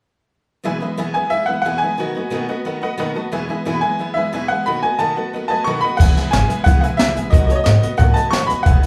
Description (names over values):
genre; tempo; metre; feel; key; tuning
rockabilly; 180 BPM; 4/4; straight; E major; A4 = 442 Hz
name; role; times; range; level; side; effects
picked steel-string acoustic guitar; accompaniment; 0.6-8.9 s; E2 to F#4; -26 LUFS; equal; none
honky-tonk upright piano; accompaniment; 0.7-8.9 s; B4 to B5; -31 LUFS; equal; none
bright upright piano; melody; 1.1-8.9 s; C#5 to C#6; -22 LUFS; equal; none
upright bass; bass; 6.0-8.9 s; E1 to A2; -21 LUFS; equal; none
jazz brush drum kit; drums; 6.0-8.9 s; crash cymbal, hi-hat, kick drum, snare drum; -18 LUFS; equal; none
room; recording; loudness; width
moderate large studio reverb, RT60 0.8 s; band playing live in one room; -18 LUFS; mono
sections
0.7-6.0 A section; 6.0-8.9 B section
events
none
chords
0.7 E; 2.0 B7; 3.3 E; 4.7 B7; 6.0 E; 7.3 B7